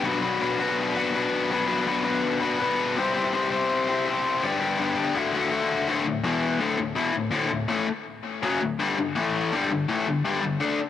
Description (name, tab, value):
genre	rock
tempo	165 BPM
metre	4/4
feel	straight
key	D mixolydian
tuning	A4 = 440 Hz
part	biting overdriven guitar	solo	0.0-10.8 s	D2 to C5	-22 LUFS	left 3 dB	tape echo
room	light reverb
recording	home recording on cassette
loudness	-22 LUFS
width	side -10 dB against mid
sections	0.0-5.9 A section; 5.9-10.9 B section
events	none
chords	0.0 Bm; 3.0 C; 4.4 G; 5.1 D; 5.9 D5; 6.2 E5; 6.6 D; 8.8 G5; 9.2 A5; 9.5 G5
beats	| 0.04 0.41 0.77 1.14 | 1.50 1.87 2.23 2.60 | 2.96 3.32 3.69 4.05 | 4.42 4.78 5.14 5.51 | 5.88 6.24 6.60 6.97 | 7.33 7.70 8.06 8.43 | 8.79 9.16 9.52 9.89 | 10.25 10.62